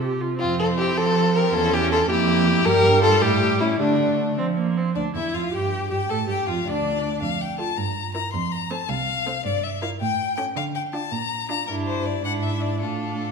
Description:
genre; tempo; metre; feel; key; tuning
quick classical-period movement for string quartet; 107 BPM (dotted quarters); 6/8; straight; D minor; A4 = 439 Hz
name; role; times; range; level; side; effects
clear viola; accompaniment; 0.0-13.3 s; G3 to A4; -28 LUFS; right 2 dB; none
warm cello; bass; 0.0-13.3 s; C2 to F3; -25 LUFS; right 5 dB; none
rich violin; melody; 0.4-13.3 s; A3 to C6; -27 LUFS; left 7 dB; none
warm violin; second line; 0.4-13.3 s; D4 to Bb4; -23 LUFS; left 2 dB; none
room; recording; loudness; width
wet recital hall reverb, RT60 1.4 s; recorded in a church or concert hall; -20 LUFS; side -5 dB against mid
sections
0.0-5.0 A section; 5.0-13.3 B section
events
none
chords
0.4 F; 1.5 Edim7; 2.7 Gm9; 3.2 A5; 3.8 Dm; 5.5 N.C.; 6.1 Dm; 7.2 F; 7.8 Edim/G; 8.3 F; 9.5 Edim/G; 10.0 A7; 10.6 Dm; 11.1 Bb; 11.7 G5; 12.2 E7/G#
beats
| 0.40 0.97 | 1.54 2.10 | 2.65 3.22 | 3.80 4.38 | 4.96 5.53 | 6.09 6.66 | 7.22 7.78 | 8.34 8.90 | 9.45 10.01 | 10.56 11.12 | 11.68 12.24 | 12.82

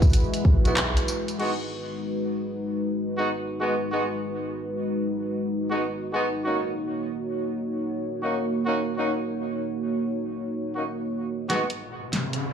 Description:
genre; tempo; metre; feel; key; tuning
glitch hop; 95 BPM; 4/4; swing 64% on 16ths; G# minor; A4 = 440 Hz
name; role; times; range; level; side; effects
dark analog pad; sustained chords; 0.0-12.5 s; G#3 to C#5; -28 LUFS; equal; chorus, sidechain pumping
electronic kick drum; drums; 0.0-0.6 s; none; -18 LUFS; equal; none
pop drum kit; drums; 0.0-1.6, 11.5-12.4 s; crash cymbal, handclaps, hi-hat, snare drum, tambourine; -29 LUFS; equal; none
warm horn section; stabs; 0.6-11.6 s; G#3 to F#4; -29 LUFS; equal; vintage 12-bit sampler grit, sidechain pumping, low-pass filter, dub echo
rubbery square bass; bass; 0.7-0.9 s; B1; -24 LUFS; equal; none
riser; sound effects; 11.8-12.5 s; none; -31 LUFS; equal; none
room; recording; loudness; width
moderate plate reverb, RT60 2.1 s; played on a big sound system in a bare room, large studio reverb, faint mains hum; -24 LUFS; side -8 dB against mid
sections
0.0-1.4 A section; 1.4-11.5 B section; 11.5-12.5 C section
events
drop 0.0-1.4; break 0.8-1.4; band accent 0.8-1.1; build-up 11.5-12.5; drum fill 11.5-12.5; riser 11.8-12.5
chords
0.0 F#9sus4; 1.4 G#m7; 6.4 D#m7; 11.5 G#m7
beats
0.13 0.77 | 1.40 2.03 2.66 3.29 | 3.92 4.55 5.19 5.82 | 6.45 7.08 7.71 8.34 | 8.97 9.61 10.24 10.87 | 11.50 12.13

